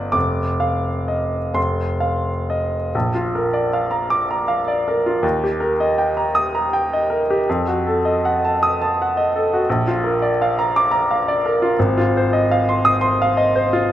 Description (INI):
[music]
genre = classical, romantic character piece for solo piano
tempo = 42-58 BPM (dotted quarters)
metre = 6/8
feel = rubato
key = Bb major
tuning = A4 = 440 Hz
[part]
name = bright baby grand piano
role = solo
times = 0.0-13.9 s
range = F1 to Eb6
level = -16 LUFS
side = equal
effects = none
[sound]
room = moderate recital hall reverb, RT60 1.4 s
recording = none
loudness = -16 LUFS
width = side -12 dB against mid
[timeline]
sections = 0.0-2.9 A section; 2.9-13.9 B section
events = none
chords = 0.1 Dm/F; 1.6 F5; 2.9 Bb; 5.2 Eb; 7.5 F7b9; 9.7 Bb; 11.8 Fm7/Ab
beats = | 0.15 1.56 | 2.94 4.13 | 5.24 6.34 | 7.47 8.61 | 9.67 10.71 | 11.76 12.84 | 13.92